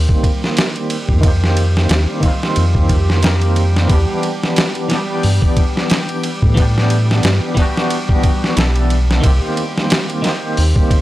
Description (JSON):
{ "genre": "trip hop", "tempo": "90 BPM", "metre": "4/4", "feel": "swing 56% on 16ths", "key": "C minor", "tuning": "A4 = 441 Hz", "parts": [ { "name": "clean electric guitar", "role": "accompaniment", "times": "0.0-11.0 s", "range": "Eb3 to Bb4", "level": "-20 LUFS", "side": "equal", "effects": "tremolo, low-pass filter, tape echo" }, { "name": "round analog bass", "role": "bass", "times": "0.0-10.7 s", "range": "B1 to A2", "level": "-14 LUFS", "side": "equal", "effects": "tube saturation" }, { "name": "backwards swelling texture", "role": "texture", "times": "0.1-11.0 s", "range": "G3 to G4", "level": "-26 LUFS", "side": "right 1 dB", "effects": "built-in reverb" }, { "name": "boom bap sampler-style drum kit", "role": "drums", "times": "0.1-11.0 s", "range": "hi-hat, kick drum, ride cymbal, snare drum", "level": "-16 LUFS", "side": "equal", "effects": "studio reverb" } ], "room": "digital ambience", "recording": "dry, gritty hardware recording", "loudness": "-13 LUFS", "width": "side -16 dB against mid", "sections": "0.0-11.0 A section", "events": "filter sweep on clean electric guitar 0.0-11.0", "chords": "0.0 Cm7; 3.9 Em7; 9.2 Cm7", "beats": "0.57 | 1.24 1.91 2.57 3.24 | 3.90 4.57 5.24 5.91 | 6.57 7.24 7.91 8.57 | 9.24 9.90 10.57" }